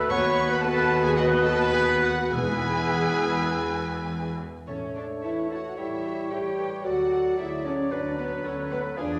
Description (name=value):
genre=quick classical-period movement for symphony orchestra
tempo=99-114 BPM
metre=4/4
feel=rubato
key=A major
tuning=A4 = 440 Hz
part: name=mellow clarinet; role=second line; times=0.0-9.2 s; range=E4 to C#5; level=-37 LUFS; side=equal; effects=none
part: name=small flute group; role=second line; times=0.0-9.2 s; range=B4 to F#6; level=-37 LUFS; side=equal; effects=none
part: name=warm oboe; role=second line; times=0.0-9.2 s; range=G#4 to D5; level=-37 LUFS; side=equal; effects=none
part: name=warm symphonic violin section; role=second line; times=0.0-9.1 s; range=F#4 to A5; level=-40 LUFS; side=equal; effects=none
part: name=dark studio viola section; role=accompaniment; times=0.0-9.1 s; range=F#4 to D#5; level=-39 LUFS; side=equal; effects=none
part: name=warm bassoon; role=accompaniment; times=0.0-9.2 s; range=F3 to B3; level=-36 LUFS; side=equal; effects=none
part: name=mellow French horn section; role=sustained chords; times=0.0-9.2 s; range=B3 to G4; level=-31 LUFS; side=equal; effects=none
part: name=warm trumpet section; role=stabs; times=0.0-4.3 s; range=B4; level=-30 LUFS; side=equal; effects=none
part: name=rich chamber cello section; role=bass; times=0.0-9.2 s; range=D#2 to G4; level=-39 LUFS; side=equal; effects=none
part: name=warm studio double bass section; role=bass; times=0.0-9.2 s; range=E1 to E2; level=-36 LUFS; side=equal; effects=none
part: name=rich chamber violin section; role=melody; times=0.1-9.2 s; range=B4 to C#6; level=-38 LUFS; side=equal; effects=none
part: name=timpani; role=percussion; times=2.3-5.5 s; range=E2 to A2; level=-39 LUFS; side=equal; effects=none
room=wet recital hall reverb, RT60 1.4 s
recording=none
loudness=-26 LUFS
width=mono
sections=0.0-4.7 A section; 4.7-9.2 B section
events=none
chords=0.1 B/D#; 2.3 E; 4.7 A; 5.8 A7; 6.8 D; 7.9 Bm/D